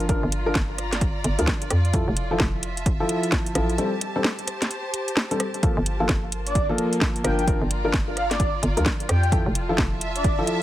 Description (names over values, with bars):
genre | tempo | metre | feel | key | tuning
UK garage, two-step garage | 130 BPM | 4/4 | swing 62% on 16ths | G dorian | A4 = 440 Hz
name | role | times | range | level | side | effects
dark baby grand piano | stabs | 0.0-10.6 s | F3 to Bb4 | -26 LUFS | left 1 dB | digital delay
hollow knocking FM bass | bass | 0.0-10.5 s | F1 to F2 | -25 LUFS | equal | none
garage drum kit | drums | 0.0-10.6 s | hi-hat, rim click, snare drum | -25 LUFS | equal | none
rich chamber string section | texture | 0.0-10.6 s | Bb3 to Bb5 | -32 LUFS | equal | sidechain pumping
electronic kick drum | drums | 0.1-10.4 s | none | -24 LUFS | equal | overdrive
breathy flute-like synth lead | melody | 6.5-10.3 s | D5 to G5 | -28 LUFS | equal | ensemble chorus, digital delay
room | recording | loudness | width
light reverb | heavily compressed radio sound | -21 LUFS | side -14 dB against mid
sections
0.0-10.6 A section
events
none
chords
0.0 Gm7; 1.9 Fmaj7; 3.8 Am7; 5.6 Gm9; 7.2 Gm7; 9.3 Fmaj7